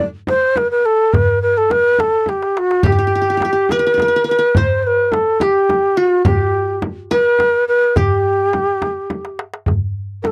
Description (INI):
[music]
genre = Arabic maqam ensemble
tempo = 70 BPM (dotted quarters)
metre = 6/8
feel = straight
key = G maqam rast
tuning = A4 = 440 Hz
[part]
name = breathy reedy ney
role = melody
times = 0.3-10.3 s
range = F4+39c to C5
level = -16 LUFS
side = equal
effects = none
[part]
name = darbuka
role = percussion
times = 0.3-10.3 s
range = none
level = -24 LUFS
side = equal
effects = none
[part]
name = frame drum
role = percussion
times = 0.3-10.3 s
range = none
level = -23 LUFS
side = equal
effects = none
[part]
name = qanun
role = second line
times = 2.8-9.3 s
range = F#4-50c to C5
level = -25 LUFS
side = equal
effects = none
[sound]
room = little or no reverb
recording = dry, close 1970s-style studio recording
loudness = -16 LUFS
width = mono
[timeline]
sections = 0.0-9.7 A section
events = drum fill 2.3-2.8, 9.1-9.7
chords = none